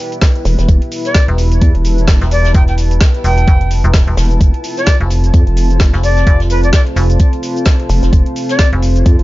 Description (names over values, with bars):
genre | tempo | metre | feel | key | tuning
bass house | 129 BPM | 4/4 | swing 57% on 16ths | E phrygian | A4 = 436 Hz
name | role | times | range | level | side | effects
dark analog pad | sustained chords | 0.0-9.2 s | B3 to A4 | -24 LUFS | left 1 dB | chorus, sidechain pumping
downlifter | sound effects | 0.0-0.7 s | none | barely audible | none | none
warbly tape-like pad | texture | 0.0-9.2 s | E4 to A5 | -23 LUFS | equal | chorus, built-in reverb, sidechain pumping
garage drum kit | drums | 0.1-9.2 s | hi-hat, shaker, snare drum | -22 LUFS | equal | overdrive
electronic kick drum | drums | 0.2-9.2 s | none | -10 LUFS | equal | overdrive
jazz brush drum kit | drums | 0.2-9.2 s | hi-hat, snare drum | -29 LUFS | left 2 dB | sidechain pumping on hats, high-pass filter on hats, high-pass filter on snare, high-pass filter on room
vowel-sweep wobble bass | bass | 0.5-9.2 s | E1 to F2 | -13 LUFS | equal | chorus, sidechain pumping
jazz flute | melody | 1.1-8.7 s | B4 to G5 | -20 LUFS | left 1 dB | tape echo
metallic FM bass | bass | 1.3-9.0 s | E1 to F1 | -12 LUFS | equal | tube saturation, sidechain pumping
room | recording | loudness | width
little or no reverb | nothing above 7.4 kHz | -9 LUFS | side -18 dB against mid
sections
0.0-9.2 A section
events
none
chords
0.0 Em; 4.4 F